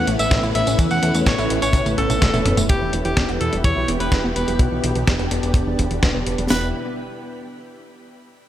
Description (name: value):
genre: italo disco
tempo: 126 BPM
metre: 4/4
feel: straight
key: E dorian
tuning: A4 = 440 Hz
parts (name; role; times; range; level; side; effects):
- bright alto saxophone; melody; 0.0-6.7 s; G4 to F#5; -25 LUFS; equal; digital delay, shimmer reverb
- string machine, full ensemble; sustained chords; 0.0-6.7 s; A3 to B4; -24 LUFS; left 1 dB; ensemble chorus, shimmer reverb
- wide unison pluck; arpeggios; 0.0-6.7 s; B2 to E4; -29 LUFS; right 2 dB; tape echo, shimmer reverb
- fat analog bass; bass; 0.0-6.7 s; E1 to E2; -24 LUFS; equal; none
- dusty soul sampler-style drum kit; drums; 0.1-6.5 s; hi-hat, snare drum, tambourine, toms; -23 LUFS; equal; gated reverb
- tight funk drum kit; drums; 0.3-6.6 s; crash cymbal, kick drum, snare drum; -20 LUFS; equal; none
room: light reverb, studio reverb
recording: none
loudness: -17 LUFS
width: side -12 dB against mid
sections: 0.0-2.7 A section; 2.7-6.5 B section; 6.5-8.4 C section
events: drum fill 1.7-2.7; filter sweep on synth arpeggio sound 2.7-6.5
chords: 0.0 Aadd9; 2.7 Em